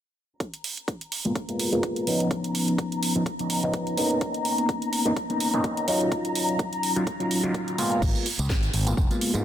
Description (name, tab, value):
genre	filtered disco house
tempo	126 BPM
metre	4/4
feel	swing 55% on 16ths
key	G# dorian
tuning	A4 = 440 Hz
part	warm symphonic violin section	sustained chords	0.4-8.0 s	A#5	-32 LUFS	left 3 dB	sidechain pumping, low-pass filter
part	electronic kick drum	drums	0.4-9.1 s	none	-28 LUFS	equal	high-pass filter on kick
part	house drum kit	drums	0.4-9.4 s	crash cymbal, hi-hat, snare drum, tambourine	-31 LUFS	right 3 dB	sidechain pumping on hats, sidechain pumping on cymbals, sidechain pumping on perc
part	overdriven reed electric piano	accompaniment	1.2-9.4 s	E#3 to E#4	-25 LUFS	equal	phaser, sidechain pumping, low-pass filter
part	tambourine	percussion	4.2-9.4 s	none	barely audible	none	none
part	growling fingered electric bass	bass	8.0-9.4 s	E#1 to G#2	-26 LUFS	equal	overdrive, sidechain pumping, low-pass filter
room	light reverb, digital ambience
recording	dense, heavily limited modern master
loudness	-23 LUFS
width	side -10 dB against mid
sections	0.4-8.0 A section; 8.0-9.4 B section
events	filter sweep 0.4-8.0, 8.0-9.4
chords	0.4 G#m69; 2.1 C#9; 4.0 Bmaj9; 5.9 D#m9; 8.0 G#m69